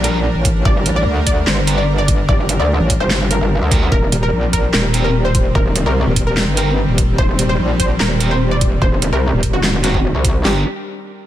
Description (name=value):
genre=heavy wobble dubstep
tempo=147 BPM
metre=4/4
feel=half-time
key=G minor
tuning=A4 = 440 Hz
part: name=wide unison pluck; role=melody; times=0.0-10.6 s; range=F#4 to D5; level=-22 LUFS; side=equal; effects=ping-pong delay
part: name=supersaw pad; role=sustained chords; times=0.0-10.6 s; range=Eb3 to Bb4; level=-24 LUFS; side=equal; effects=sidechain pumping
part: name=thick fuzz guitar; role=stabs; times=0.0-10.6 s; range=C4 to Bb4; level=-25 LUFS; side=right 2 dB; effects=distortion, ping-pong delay
part: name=metallic wobble bass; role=bass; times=0.0-9.5 s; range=Eb1 to D2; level=-16 LUFS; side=equal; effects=chorus, overdrive
part: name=dubstep drum kit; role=drums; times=0.0-10.3 s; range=handclaps, hi-hat, snare drum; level=-20 LUFS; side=right 1 dB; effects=studio reverb
part: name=dubstep drum kit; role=drums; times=0.5-10.5 s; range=kick drum, snare drum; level=-16 LUFS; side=equal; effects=studio reverb
part: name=metallic wobble bass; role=bass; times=0.7-10.6 s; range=Eb1 to D2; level=-17 LUFS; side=equal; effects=chorus, overdrive
room=digital ambience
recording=none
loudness=-13 LUFS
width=side -12 dB against mid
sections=0.0-10.4 A section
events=drop 0.0-10.4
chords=0.0 Gm; 3.9 Eb6; 10.4 Gm